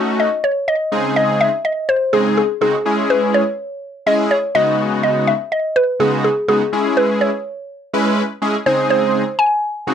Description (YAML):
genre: pop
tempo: 124 BPM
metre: 4/4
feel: straight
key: unclear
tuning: A4 = 443 Hz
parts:
  - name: mallet-like synth pluck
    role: melody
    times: 0.0-9.9 s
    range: G#4 to G#5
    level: -16 LUFS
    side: equal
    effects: chorus, slapback echo
  - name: big bright polysynth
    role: accompaniment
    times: 0.0-9.9 s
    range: C#3 to B4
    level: -17 LUFS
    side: equal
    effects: chorus
room: moderate booth ambience, RT60 0.2 s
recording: dry, close 1970s-style studio recording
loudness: -14 LUFS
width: side -8 dB against mid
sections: 0.9-9.9 A section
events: none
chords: 0.0 D#m7b5; 0.9 G#/C#; 2.9 C#m; 4.5 G#m7/C#; 6.7 C#m; 8.7 G#/C#